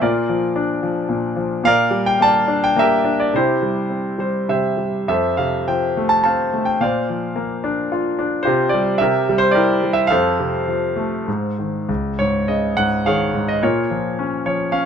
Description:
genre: classical, lyrical solo piano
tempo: 94-112 BPM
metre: 3/4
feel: rubato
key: F major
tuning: A4 = 440 Hz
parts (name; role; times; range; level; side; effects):
- clear concert grand piano; solo; 0.0-14.9 s; Db2 to A5; -16 LUFS; equal; none
room: little or no reverb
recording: close, detailed microphones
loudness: -16 LUFS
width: side -7 dB against mid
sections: 0.0-11.9 A section; 11.9-14.9 B section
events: grand piano fill 14.2-14.9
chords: 0.0 Bb; 1.6 Gm/Bb; 3.3 C; 5.1 F; 6.8 Bbadd9; 8.5 Csus4; 9.0 C7; 10.1 F; 11.3 Ab; 11.9 Dbsus2; 13.6 Bbm

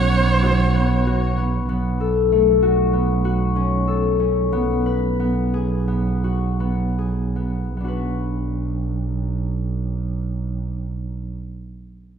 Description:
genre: contemporary instrumental, chamber music in an uneven meter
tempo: 148-194 BPM (eighths)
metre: 9/8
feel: straight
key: B dorian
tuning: A4 = 439 Hz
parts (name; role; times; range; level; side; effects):
- clear viola; second line; 0.0-1.4 s; C#5; -23 LUFS; right 3 dB; none
- concert harp; arpeggios; 0.0-11.4 s; A3 to B4; -22 LUFS; left 5 dB; none
- dark double bass; bass; 0.0-11.3 s; B1; -21 LUFS; right 2 dB; none
- frame drum; percussion; 0.4-1.5 s; none; barely audible; none; none
room: wet recital hall reverb, RT60 1.4 s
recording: heard from further back in the room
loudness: -18 LUFS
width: side -8 dB against mid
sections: 0.0-1.7 A section; 1.7-7.8 B section; 7.8-11.4 C section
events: slowing down 2.3-7.8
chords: 0.0 Bsus2; 4.5 B5; 7.8 Bm

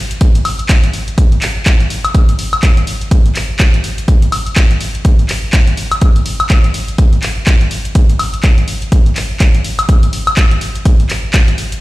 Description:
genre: house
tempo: 124 BPM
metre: 4/4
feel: swing 59% on 16ths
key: none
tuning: none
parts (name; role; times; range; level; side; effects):
- punchy analog drum machine; drums; 0.1-11.8 s; handclaps, hi-hat, woodblock; -18 LUFS; left 1 dB; none
- electronic kick drum; drums; 0.2-11.5 s; none; -11 LUFS; equal; none
room: digital ambience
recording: played on a big sound system in a bare room, stone room reverb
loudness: -10 LUFS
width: side -18 dB against mid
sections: 0.0-11.8 A section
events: none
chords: none

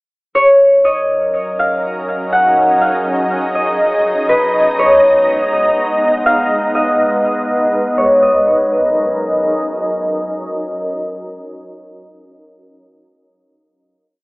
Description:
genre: hip hop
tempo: 122 BPM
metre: 4/4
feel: half-time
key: Eb minor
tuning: A4 = 440 Hz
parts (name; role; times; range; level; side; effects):
- concert harp; melody; 0.3-10.0 s; Cb5 to Gb5; -13 LUFS; equal; low-pass filter, tape echo
- shimmering ambient pad; sustained chords; 1.3-11.5 s; Gb3 to Bb5; -16 LUFS; equal; chorus, built-in reverb
room: moderate plate reverb, RT60 2.3 s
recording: echo-heavy mix, low-pass filter, telephone sound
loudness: -12 LUFS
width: side -25 dB against mid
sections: 0.4-8.2 breakdown; 8.2-12.2 final chord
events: filter sweep 0.4-8.2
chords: 0.4 Ebm7; 4.3 Abmadd9; 8.2 Ebm7

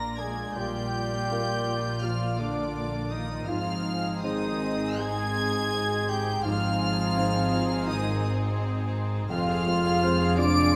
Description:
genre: cinematic, emotional film score for orchestra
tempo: 83 BPM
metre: 4/4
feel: rubato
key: unclear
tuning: A4 = 439 Hz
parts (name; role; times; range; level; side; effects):
- warm symphonic violin section; melody; 0.0-10.7 s; D6 to D7; -36 LUFS; equal; none
- clear clarinet; second line; 0.0-10.8 s; D4 to D5; -37 LUFS; equal; none
- mellow hollow large flute ensemble; second line; 0.0-10.8 s; D5 to D6; -36 LUFS; equal; none
- warm symphonic violin section; second line; 0.0-10.8 s; F4 to F5; -40 LUFS; equal; none
- warm concert grand piano; accompaniment; 0.0-10.8 s; F2 to C5; -35 LUFS; equal; none
- warm studio viola section; accompaniment; 0.0-10.8 s; Ab3 to Ab4; -40 LUFS; equal; none
- dark French horn section; sustained chords; 0.0-10.7 s; D3 to D4; -34 LUFS; equal; none
- dark studio cello section; bass; 0.0-10.8 s; F2 to Bb2; -37 LUFS; equal; none
- warm symphonic double bass section; bass; 0.0-10.8 s; F1 to Bb1; -36 LUFS; equal; none
room: wet scoring stage reverb, RT60 1.7 s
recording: none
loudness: -27 LUFS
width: mono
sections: 0.0-10.8 A section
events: none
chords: 0.0 Bb; 3.5 Ab; 9.3 Fm

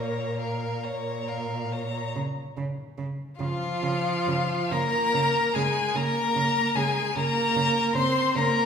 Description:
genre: classical, slow romantic movement for string quartet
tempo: 44-51 BPM (dotted quarters)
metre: 12/8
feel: rubato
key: Db major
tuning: A4 = 440 Hz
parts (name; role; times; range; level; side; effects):
- clear violin; melody; 0.0-8.7 s; F5 to C6; -28 LUFS; left 5 dB; none
- clear violin; second line; 0.0-8.7 s; F4 to Db5; -29 LUFS; equal; none
- rich viola; accompaniment; 0.0-8.7 s; F3 to C4; -29 LUFS; right 1 dB; none
- rich cello; bass; 0.0-8.4 s; Bb2 to Db3; -31 LUFS; right 2 dB; none
room: wet recital hall reverb, RT60 1.8 s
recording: recorded in a church or concert hall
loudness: -24 LUFS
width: side -7 dB against mid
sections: 0.0-2.2 A section; 2.2-8.7 B section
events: none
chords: 0.0 Bbm; 2.2 Db

